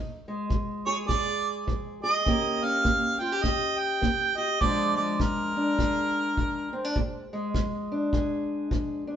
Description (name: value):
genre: acoustic country blues, solo or duo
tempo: 102 BPM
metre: 4/4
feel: swing 61% on 8ths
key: Bb mixolydian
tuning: A4 = 440 Hz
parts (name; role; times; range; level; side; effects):
- fingerpicked steel-string acoustic guitar; accompaniment; 0.0-9.2 s; F2 to Ab4; -29 LUFS; left 1 dB; none
- kick drum; drums; 0.5-8.9 s; none; -29 LUFS; equal; none
- warm harmonica; melody; 0.9-7.0 s; Bb4 to G5; -26 LUFS; right 3 dB; none
room: wet stone room reverb, RT60 1.3 s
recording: band playing live in one room, nothing above 7.9 kHz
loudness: -24 LUFS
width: side -9 dB against mid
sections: 0.0-9.2 A section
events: none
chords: 0.0 Bb7; 2.3 Eb7; 4.6 Bb7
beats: 0.50 1.09 1.67 | 2.26 2.85 3.44 4.02 | 4.61 5.20 5.78 6.37 | 6.95 7.54 8.12 8.70